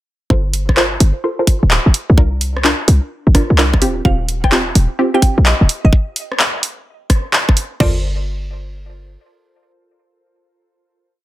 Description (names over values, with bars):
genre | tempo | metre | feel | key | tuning
UK garage, two-step garage | 128 BPM | 4/4 | swing 66% on 16ths | G minor | A4 = 441 Hz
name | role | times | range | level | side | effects
punchy chord stab | stabs | 0.3-11.2 s | C4 to C5 | -19 LUFS | equal | chorus, tape echo
short 808-style bass | bass | 0.3-9.2 s | D1 to C2 | -14 LUFS | equal | none
garage drum kit | drums | 0.3-7.9 s | crash cymbal, kick drum, toms | -14 LUFS | equal | none
house drum kit | drums | 0.5-7.7 s | handclaps, hi-hat, rim click | -16 LUFS | equal | overdrive
mallet-like synth pluck | melody | 4.0-11.2 s | D5 to G5 | -24 LUFS | right 1 dB | chorus, tape echo
room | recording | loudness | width
digital ambience | none | -12 LUFS | side -15 dB against mid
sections
0.3-7.8 groove; 7.8-11.2 final chord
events
filter sweep on synth stab 0.3-5.9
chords
0.3 Gm11; 1.9 C7sus4; 3.8 Eb69; 5.7 N.C.; 7.8 Gm11